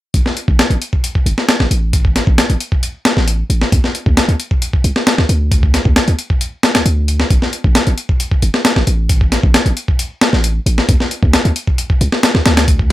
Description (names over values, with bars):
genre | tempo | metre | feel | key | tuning
breakbeat, breaks | 134 BPM | 4/4 | straight | A minor | A4 = 438 Hz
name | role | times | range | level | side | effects
warm 808-style bass | bass | 0.1-12.9 s | G1 to D2 | -14 LUFS | equal | none
breakbeat sampler-style drum kit | drums | 0.1-12.9 s | hi-hat, kick drum, snare drum | -13 LUFS | equal | none
room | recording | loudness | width
little or no reverb | none | -12 LUFS | side -16 dB against mid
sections
0.1-12.9 A section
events
filter sweep on 808-style bass 0.1-12.9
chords
none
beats
| 0.14 0.59 1.04 1.49 | 1.93 2.38 2.83 3.28 | 3.72 4.17 4.62 5.07 | 5.51 5.96 6.41 6.86 | 7.31 7.75 8.20 8.65 | 9.10 9.54 9.99 10.44 | 10.89 11.34 11.78 12.23 | 12.68